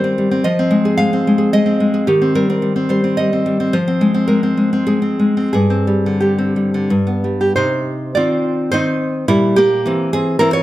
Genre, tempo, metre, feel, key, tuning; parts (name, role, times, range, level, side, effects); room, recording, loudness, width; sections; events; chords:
romantic piece for solo classical guitar; 85-113 BPM; 3/4; rubato; C minor; A4 = 441 Hz
nylon-string guitar; solo; 0.0-10.6 s; G2 to F5; -13 LUFS; equal
moderate recital hall reverb, RT60 1.3 s; -13 LUFS; side -15 dB against mid
0.0-7.5 A section; 7.5-10.6 B section
0.4 Fm7; 2.1 Cm/Eb; 3.7 Fm; 5.5 Gsus4; 6.9 G; 7.5 Cm; 9.3 C7/Bb